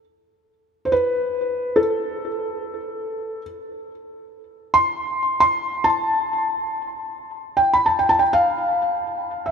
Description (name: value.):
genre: world meditative, free-time meditation music.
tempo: free time.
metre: none.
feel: none.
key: A minor.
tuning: A4 = 441 Hz.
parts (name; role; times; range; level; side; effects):
felt-muted upright piano; solo; 0.9-9.5 s; A4 to C6; -19 LUFS; equal; ping-pong delay.
room: wet cathedral reverb, RT60 5.5 s.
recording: none.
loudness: -19 LUFS.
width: side -6 dB against mid.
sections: 0.0-3.7 A section; 3.7-9.5 A section.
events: none.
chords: none.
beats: free time.